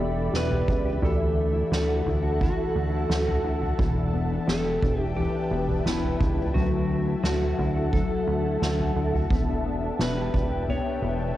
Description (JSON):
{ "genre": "dream pop", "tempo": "87 BPM", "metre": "4/4", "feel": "straight", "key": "E minor", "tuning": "A4 = 440 Hz", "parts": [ { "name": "clean lap steel guitar", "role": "melody", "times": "0.0-11.4 s", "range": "E4 to C#5", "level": "-31 LUFS", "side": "right 1 dB", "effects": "cassette tape, analog delay" }, { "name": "ethereal airy pad", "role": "sustained chords", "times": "0.0-11.4 s", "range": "G4 to B5", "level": "-32 LUFS", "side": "right 1 dB", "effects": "ensemble chorus, built-in reverb, cassette tape" }, { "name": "mellow electric guitar", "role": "arpeggios", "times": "0.0-11.4 s", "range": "E3 to G4", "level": "-30 LUFS", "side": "left 6 dB", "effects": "ensemble chorus, cassette tape, analog delay" }, { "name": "chorused synth bass", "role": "bass", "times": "0.0-11.3 s", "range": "E1 to D2", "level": "-27 LUFS", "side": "right 1 dB", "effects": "none" }, { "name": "soft-mallet drum kit", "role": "drums", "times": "0.3-10.8 s", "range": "kick drum, snare drum, toms", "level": "-28 LUFS", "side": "right 1 dB", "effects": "cassette tape" } ], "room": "light reverb, studio reverb", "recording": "home recording on cassette", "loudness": "-23 LUFS", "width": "side -14 dB against mid", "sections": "0.0-11.4 A section", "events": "none", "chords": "0.0 Em7; 1.0 Dadd9; 3.8 Em7; 6.5 Dadd9; 9.3 Em7" }